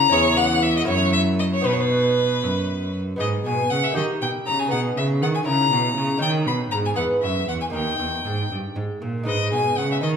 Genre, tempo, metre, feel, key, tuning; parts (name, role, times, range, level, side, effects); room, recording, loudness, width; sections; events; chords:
classical, baroque-style sonata movement with continuo; 79 BPM (dotted quarters); 6/8; straight; B major, G# minor from 3.2 s; A4 = 440 Hz
clear violin; melody; 0.0-10.1 s; B4 to B5; -22 LUFS; left 3 dB
lute; accompaniment; 0.0-10.2 s; D#2 to C#5; -26 LUFS; right 1 dB
rich cello; bass; 0.0-10.2 s; D#2 to D#3; -24 LUFS; right 2 dB
wet recital hall reverb, RT60 1.6 s; minimal, uncompressed stereo recording; -19 LUFS; side -7 dB against mid
0.0-3.2 A section; 3.2-10.2 A section
0.1 C#m/E; 0.9 F#7; 1.7 B; 3.2 G#m; 4.0 D#; 4.7 G#m/B; 5.5 A#dim; 6.2 D#5; 7.0 E; 7.7 D#; 9.3 G#m